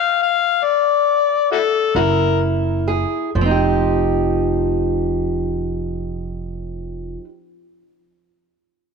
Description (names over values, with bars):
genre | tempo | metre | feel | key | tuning
acoustic country blues, solo or duo | 42-48 BPM (dotted quarters) | 12/8 | straight | unclear | A4 = 438 Hz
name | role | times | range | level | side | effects
overdriven harmonica | melody | 0.0-2.4 s | E4 to F5 | -16 LUFS | left 9 dB | none
upright bass | bass | 1.9-7.1 s | F1 to Gb1 | -23 LUFS | right 3 dB | none
fingerpicked steel-string acoustic guitar | accompaniment | 2.0-7.3 s | F3 to Ab4 | -20 LUFS | right 1 dB | none
room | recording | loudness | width
moderate echo chamber reverb, RT60 2.3 s | none | -16 LUFS | side -5 dB against mid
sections
0.0-3.4 A section; 3.4-8.9 B section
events
slowing down 0.0-3.4; harmonica solo 0.0-3.4; stop 0.0-2.0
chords
0.0 N.C.; 2.0 Gbsus2; 3.4 Fsus2